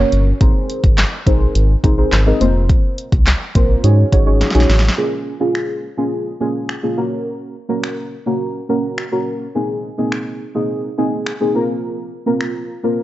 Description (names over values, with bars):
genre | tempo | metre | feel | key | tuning
dance-pop | 105 BPM | 4/4 | straight | Bb minor | A4 = 440 Hz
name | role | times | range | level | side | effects
deep mellow chord stab | accompaniment | 0.0-13.0 s | Bb3 to Eb5 | -18 LUFS | equal | chorus, phaser
round analog bass | bass | 0.0-4.9 s | F1 to Ab2 | -14 LUFS | equal | sidechain pumping
deep house drum kit | drums | 0.1-12.5 s | finger snaps, handclaps, hi-hat, kick drum, snare drum | -16 LUFS | equal | none
room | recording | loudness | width
light reverb | dry, gritty hardware recording, cassette tape, nothing above 7.8 kHz | -14 LUFS | side -15 dB against mid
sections
0.0-5.0 A section; 5.0-13.0 B section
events
drum fill 4.4-5.0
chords
0.4 Abadd9; 2.4 Fsus4; 3.8 Ab7sus4; 5.0 Bbm7; 7.0 Gb; 9.6 Abadd9; 11.6 Fsus4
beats
| 0.41 0.98 1.55 2.12 | 2.69 3.27 3.84 4.41 | 4.98 5.55 6.12 6.69 | 7.26 7.84 8.41 8.98 | 9.55 10.12 10.69 11.27 | 11.84 12.41 12.98